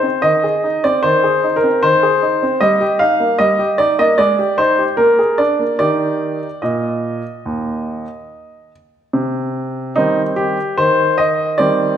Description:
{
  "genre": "classical-period piano sonatina",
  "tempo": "74 BPM",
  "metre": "4/4",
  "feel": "rubato",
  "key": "Eb major",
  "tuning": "A4 = 440 Hz",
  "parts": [
    { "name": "clear baby grand piano", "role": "solo", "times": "0.0-12.0 s", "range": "Eb2 to F5", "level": "-13 LUFS", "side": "equal", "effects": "none" }
  ],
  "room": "moderate recital hall reverb, RT60 1.6 s",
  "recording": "none",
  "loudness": "-13 LUFS",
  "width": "side -9 dB against mid",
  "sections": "0.0-9.1 A section; 9.1-12.0 B section",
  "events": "none",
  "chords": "0.0 Ab/Eb; 2.6 Eb/G; 4.2 Abmaj7; 5.0 Bb7; 5.8 Eb; 9.1 Cm"
}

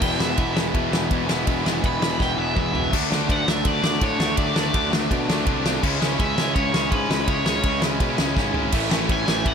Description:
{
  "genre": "punk rock",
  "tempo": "166 BPM",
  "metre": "4/4",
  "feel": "straight",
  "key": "unclear",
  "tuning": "A4 = 440 Hz",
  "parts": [
    { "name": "overdriven electric guitar", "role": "melody", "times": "0.0-9.5 s", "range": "B4 to B5", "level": "-26 LUFS", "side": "equal", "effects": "none" },
    { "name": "distorted electric guitar", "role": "riff", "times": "0.0-9.5 s", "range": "E2 to D4", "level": "-26 LUFS", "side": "left 17 dB", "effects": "overdrive" },
    { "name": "distorted electric guitar", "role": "riff", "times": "0.0-9.5 s", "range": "A2 to E4", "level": "-26 LUFS", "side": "right 18 dB", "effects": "overdrive" },
    { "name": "fuzz picked electric bass", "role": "bass", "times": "0.0-9.5 s", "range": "E1 to B2", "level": "-28 LUFS", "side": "equal", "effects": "overdrive" },
    { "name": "loose indie drum kit", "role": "drums", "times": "0.0-9.5 s", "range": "crash cymbal, kick drum, ride cymbal, snare drum, toms", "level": "-24 LUFS", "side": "equal", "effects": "none" }
  ],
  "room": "little or no reverb",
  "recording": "none",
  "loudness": "-19 LUFS",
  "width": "side -7 dB against mid",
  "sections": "0.0-2.9 A section; 2.9-9.5 B section",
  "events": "overdriven electric guitar solo 0.0-2.9; drum fill 2.2-2.9, 8.4-8.7",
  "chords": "0.0 E; 2.9 D; 5.8 C#m; 8.7 A"
}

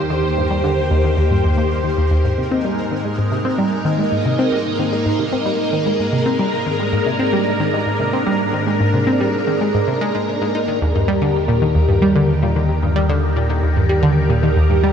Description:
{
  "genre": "ambient, sequencer-driven space music",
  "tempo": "112 BPM",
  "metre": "4/4",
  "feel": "straight",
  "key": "Eb major",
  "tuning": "A4 = 439 Hz",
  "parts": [
    { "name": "phased string machine", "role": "sustained chords", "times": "0.0-14.9 s", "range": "Eb2 to C5", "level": "-18 LUFS", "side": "equal", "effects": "ensemble chorus, phaser" },
    { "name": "analog pluck", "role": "riff", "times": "0.0-14.9 s", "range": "Eb2 to Eb4", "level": "-18 LUFS", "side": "equal", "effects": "chorus, phaser, vintage 12-bit sampler grit, ping-pong delay" },
    { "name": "pulsing gated texture", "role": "texture", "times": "0.0-14.9 s", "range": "Bb3 to Eb5", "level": "-29 LUFS", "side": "left 2 dB", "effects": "chorus, built-in reverb" }
  ],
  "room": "moderate huge ambient reverb, RT60 8.6 s",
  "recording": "dreamy mix soaked in reverb",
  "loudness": "-15 LUFS",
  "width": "side -8 dB against mid",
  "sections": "0.0-10.8 A section; 10.8-14.9 B section",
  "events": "fade-in on synth texture 0.0-10.8; filter sweep on synth arpeggio sound 0.0-10.8",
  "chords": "0.0 Eb; 2.2 Absus2; 10.8 Eb"
}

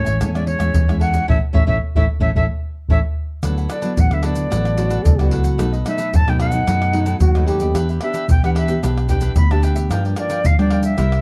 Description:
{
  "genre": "samba and choro",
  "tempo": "111 BPM",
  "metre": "4/4",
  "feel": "straight",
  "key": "A major, D major from 3.4 s",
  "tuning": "A4 = 440 Hz",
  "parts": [
    { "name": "jazz flute", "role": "melody", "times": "0.0-11.2 s", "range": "C#5 to B5", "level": "-26 LUFS", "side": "equal", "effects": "none" },
    { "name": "cavaquinho", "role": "accompaniment", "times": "0.0-11.2 s", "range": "D4 to G#5", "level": "-34 LUFS", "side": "equal", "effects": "none" },
    { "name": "nylon-string guitar", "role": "accompaniment", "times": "0.0-11.2 s", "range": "F#2 to G4", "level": "-27 LUFS", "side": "equal", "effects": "none" },
    { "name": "fingered electric bass", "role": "bass", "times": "0.0-11.2 s", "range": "A1 to G3", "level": "-22 LUFS", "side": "equal", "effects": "none" },
    { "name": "tube shaker, surdo, pandeiro and tamborim", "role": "percussion", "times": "0.1-11.2 s", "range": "none", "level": "-21 LUFS", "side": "equal", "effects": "none" },
    { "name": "mellow trombone", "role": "second line", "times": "4.8-7.9 s", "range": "D#4 to A4", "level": "-25 LUFS", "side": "equal", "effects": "none" }
  ],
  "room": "light reverb",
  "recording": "dark, warm production",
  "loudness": "-18 LUFS",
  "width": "mono",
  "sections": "0.0-3.4 A section; 3.4-11.2 B section",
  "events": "band accent 1.3-3.4; drum fill 2.9-3.4",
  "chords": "0.0 Amaj7; 3.4 D69; 5.6 B7; 7.8 Em7; 9.9 Gm7"
}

